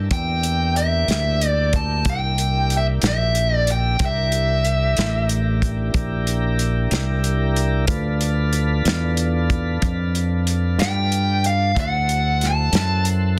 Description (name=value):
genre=slow blues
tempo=62 BPM (dotted quarters)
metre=12/8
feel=straight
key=unclear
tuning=A4 = 440 Hz
part: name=tonewheel organ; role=sustained chords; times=0.0-13.4 s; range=Bb3 to C5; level=-31 LUFS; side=equal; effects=slow rotary speaker
part: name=fingered electric bass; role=bass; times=0.0-13.4 s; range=A1 to G2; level=-23 LUFS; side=equal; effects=none
part: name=dark smooth lead guitar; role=melody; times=0.1-13.0 s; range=E5 to A5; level=-24 LUFS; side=equal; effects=overdrive
part: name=warm soul drum kit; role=drums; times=0.1-13.2 s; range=hi-hat, kick drum, snare drum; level=-26 LUFS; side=equal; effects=none
room=studio reverb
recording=dense, heavily limited modern master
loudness=-20 LUFS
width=mono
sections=0.0-13.4 A section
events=none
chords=0.0 C7; 7.9 G7; 11.8 D7